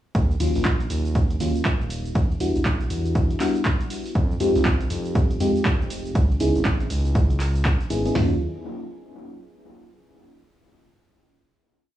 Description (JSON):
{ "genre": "deep house", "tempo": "120 BPM", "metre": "4/4", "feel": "swing 61% on 16ths", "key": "unclear", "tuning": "A4 = 440 Hz", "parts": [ { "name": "round analog bass", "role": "bass", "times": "0.2-8.4 s", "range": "Eb1 to F2", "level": "-25 LUFS", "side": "equal", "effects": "tube saturation, sidechain pumping" }, { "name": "punchy analog drum machine", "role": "drums", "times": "0.2-8.3 s", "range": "hi-hat, kick drum, snare drum, toms", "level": "-22 LUFS", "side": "equal", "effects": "vintage 12-bit sampler grit" }, { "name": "punchy analog drum machine", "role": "drums", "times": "0.2-8.1 s", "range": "handclaps, hi-hat, ride cymbal, shaker", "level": "-31 LUFS", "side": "right 1 dB", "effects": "vintage 12-bit sampler grit" }, { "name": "mellow FM electric piano", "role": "stabs", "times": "0.4-8.3 s", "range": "Gb3 to Ab4", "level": "-25 LUFS", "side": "left 1 dB", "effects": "chorus, phaser, vintage 12-bit sampler grit, sidechain pumping, analog delay" } ], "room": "little or no reverb", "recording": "cassette tape, studio reverb", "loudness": "-20 LUFS", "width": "side -13 dB against mid", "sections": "0.2-8.2 drop; 8.2-10.2 final chord", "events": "drop 0.2-8.2", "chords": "0.2 Ebm9; 2.2 Em9; 4.2 Fm9; 6.2 Dbm9; 8.2 N.C." }